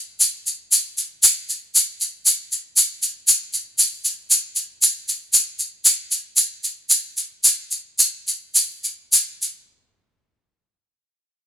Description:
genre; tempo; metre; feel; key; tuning
bossa nova; 99-117 BPM; 4/4; straight; none; none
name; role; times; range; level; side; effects
egg shaker; percussion; 0.2-9.7 s; none; -14 LUFS; equal; none
room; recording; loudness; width
little or no reverb; band playing live in one room; -16 LUFS; side -9 dB against mid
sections
0.0-1.2 A section; 1.2-9.7 B section; 9.7-11.5 C section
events
slowing down 5.3-9.7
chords
none

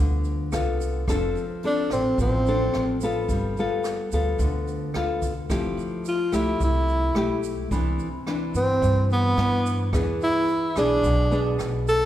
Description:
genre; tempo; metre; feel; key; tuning
bossa nova; 108 BPM; 4/4; straight; C major; A4 = 440 Hz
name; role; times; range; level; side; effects
nylon-string guitar; accompaniment; 0.0-12.1 s; G2 to A4; -26 LUFS; left 2 dB; none
upright bass; bass; 0.0-12.1 s; F1 to G2; -26 LUFS; equal; none
jazz brush drum kit; drums; 0.2-12.0 s; hi-hat, kick drum, rim click; -32 LUFS; equal; none
tube shaker; percussion; 0.2-12.1 s; none; -46 LUFS; right 8 dB; none
breathy tenor saxophone; melody; 1.7-12.1 s; B3 to A4; -23 LUFS; right 1 dB; none
room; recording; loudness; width
moderate concert hall reverb, RT60 2.4 s; recorded in a church or concert hall; -21 LUFS; side -12 dB against mid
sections
0.0-12.1 A section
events
tenor saxophone solo 0.0-12.1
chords
0.0 G9 (rootless); 1.1 Dm7/F; 3.3 G9; 5.5 Fmaj9; 7.7 Cmaj9; 9.9 E7

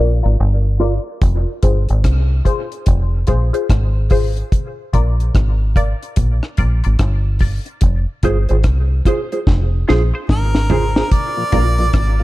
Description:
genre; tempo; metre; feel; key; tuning
dub reggae; 73 BPM; 4/4; swing 62% on 16ths; F dorian; A4 = 440 Hz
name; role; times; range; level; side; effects
mellow electric guitar; accompaniment; 0.0-0.9, 8.2-11.9 s; F4 to D5; -22 LUFS; right 2 dB; spring reverb, low-pass filter, dub echo
filtered dub chord stab; stabs; 0.0-11.7 s; F4 to D5; -25 LUFS; left 4 dB; phaser, high-pass filter, low-pass filter, dub echo
deep dub fingered electric bass; bass; 0.0-12.2 s; F1 to C2; -15 LUFS; equal; none
deep reggae drum kit; drums; 1.2-12.2 s; hi-hat, kick drum, rim click, snare drum, toms; -16 LUFS; equal; none
bright harmonica; melody; 10.3-12.2 s; Bb4 to D5; -21 LUFS; right 1 dB; dub echo
tonewheel organ; accompaniment; 11.4-12.2 s; Bb2 to F4; -26 LUFS; left 2 dB; slow rotary speaker, dub echo
room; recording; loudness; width
studio ambience; dark, warm production; -14 LUFS; side -17 dB against mid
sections
0.0-11.1 A section; 11.1-12.2 B section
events
break 0.0-1.2; filter sweep 0.0-11.1; filter sweep on synth stab 1.2-11.1; drum fill 9.5-11.1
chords
0.0 Bb; 1.2 Fm; 4.5 Bb; 7.8 Fm; 11.1 Bb

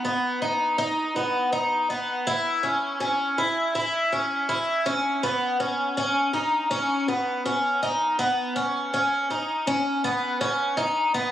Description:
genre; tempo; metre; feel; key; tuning
dream pop; 81 BPM; 4/4; straight; B major; A4 = 442 Hz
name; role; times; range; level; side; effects
picked twelve-string acoustic guitar; solo; 0.0-11.3 s; B3 to E4; -22 LUFS; equal; lush chorus, digital delay
room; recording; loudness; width
wet booth ambience, RT60 0.2 s; recorded on a phone in the room, studio reverb, compression; -22 LUFS; side -11 dB against mid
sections
0.0-5.2 A section; 5.2-11.3 B section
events
none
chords
none

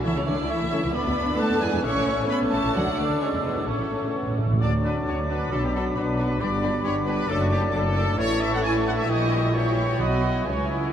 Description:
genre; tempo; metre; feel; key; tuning
quick classical-period movement for symphony orchestra; 133 BPM; 2/4; straight; A major, D major from 4.6 s; A4 = 445 Hz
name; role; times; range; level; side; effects
rich chamber violin section; melody; 0.0-10.9 s; A4 to D6; -34 LUFS; equal; none
silver concert flute; second line; 0.0-10.9 s; B5 to F#6; -33 LUFS; right 2 dB; none
warm oboe; second line; 0.0-10.9 s; C#5 to B5; -34 LUFS; left 3 dB; none
warm symphonic violin section; second line; 0.0-10.9 s; A3 to C#5; -33 LUFS; left 1 dB; none
mellow bassoon; accompaniment; 0.0-10.9 s; E3 to B3; -33 LUFS; right 4 dB; none
rich symphonic viola section; accompaniment; 0.0-10.9 s; C#3 to F#4; -32 LUFS; left 1 dB; none
dark studio cello section; bass; 0.0-10.9 s; D2 to C#4; -31 LUFS; equal; none
warm chamber double bass section; bass; 0.1-10.9 s; F#1 to E2; -28 LUFS; equal; none
warm French horn section; sustained chords; 0.3-10.9 s; F#3 to F#4; -30 LUFS; left 1 dB; none
timpani; percussion; 3.7-6.2, 10.0-10.4 s; A2 to B2; -29 LUFS; right 2 dB; none
clear trumpet section; stabs; 4.6-10.9 s; E4 to G#5; -29 LUFS; left 1 dB; none
room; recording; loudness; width
wet huge ambient reverb, RT60 8.0 s; in a vast, echoing space; -21 LUFS; side -9 dB against mid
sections
0.0-4.6 A section; 4.6-10.9 B section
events
timpani fill 3.7-4.6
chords
0.1 A/C#; 0.9 Bm/D; 1.4 E7; 1.8 A; 2.7 D; 3.2 E7; 3.7 A; 4.6 D; 5.5 Bm; 6.4 G; 7.3 D/F#; 8.2 A; 9.1 A#dim7; 10.0 B; 10.5 C#m

